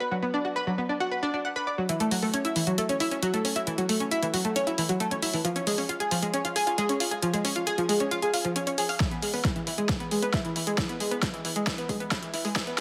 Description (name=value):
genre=uplifting trance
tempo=135 BPM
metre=4/4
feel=straight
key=F# minor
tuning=A4 = 440 Hz
part: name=analog pluck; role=arpeggios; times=0.0-12.8 s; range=E3 to F#5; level=-29 LUFS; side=equal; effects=lush chorus, sidechain pumping, tape echo
part: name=big-room dance drum kit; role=drums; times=1.9-12.8 s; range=hi-hat, snare drum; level=-33 LUFS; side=equal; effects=overdrive, sidechain pumping on hats, high-pass filter on hats, high-pass filter on snare
part: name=electronic kick drum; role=drums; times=9.0-12.6 s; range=none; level=-32 LUFS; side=equal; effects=overdrive
room=moderate digital room reverb, RT60 1.1 s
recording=high-pass filter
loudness=-27 LUFS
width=mono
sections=0.0-1.9 A section; 1.9-12.8 B section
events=filter sweep on synth pluck 0.0-1.9; build-up 1.9-12.8; drum fill 9.0-12.8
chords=none